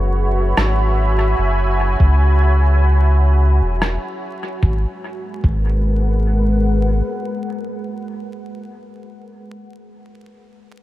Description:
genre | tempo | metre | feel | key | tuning
ambient dub | 74 BPM | 4/4 | straight | G# minor | A4 = 443 Hz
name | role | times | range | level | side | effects
deep dark ambient pad | sustained chords | 0.0-8.4 s | G#3 to B5 | -22 LUFS | equal | chorus, built-in reverb
soft dub sub bass | bass | 0.0-7.0 s | E1 to C#2 | -15 LUFS | equal | tube saturation
electronic rim click | drums | 0.6-4.0 s | none | -23 LUFS | equal | dub echo
electronic kick drum | drums | 2.0-5.7 s | none | -16 LUFS | equal | none
room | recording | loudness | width
light reverb | vinyl crackle | -14 LUFS | side -15 dB against mid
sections
0.0-4.6 A section; 4.6-7.9 B section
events
none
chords
0.0 F#7sus4; 4.6 G#m7

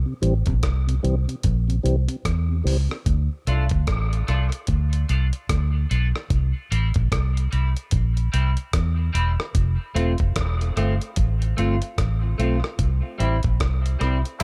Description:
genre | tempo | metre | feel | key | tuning
dub reggae | 74 BPM | 4/4 | swing 61% on 16ths | unclear | A4 = 438 Hz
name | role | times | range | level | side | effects
vintage muted fingered electric bass | bass | 0.0-14.2 s | E1 to E2 | -23 LUFS | equal | none
mellow tonewheel organ | accompaniment | 0.1-3.0 s | C3 to C4 | -30 LUFS | equal | overdrive, chorus vibrato, slow rotary speaker, high-pass filter
dusty soul sampler-style drum kit | drums | 0.2-14.4 s | hi-hat, kick drum, rim click | -28 LUFS | equal | none
clean electric guitar | accompaniment | 3.5-14.2 s | G3 to F4 | -32 LUFS | equal | subtle chorus, high-pass filter, dub echo
room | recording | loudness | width
digital ambience | none | -23 LUFS | mono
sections
0.0-3.1 A section; 3.1-14.4 B section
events
break 0.0-3.1; filter sweep 0.0-9.5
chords
0.0 C; 3.1 Dm; 6.3 C; 9.5 F; 12.8 C

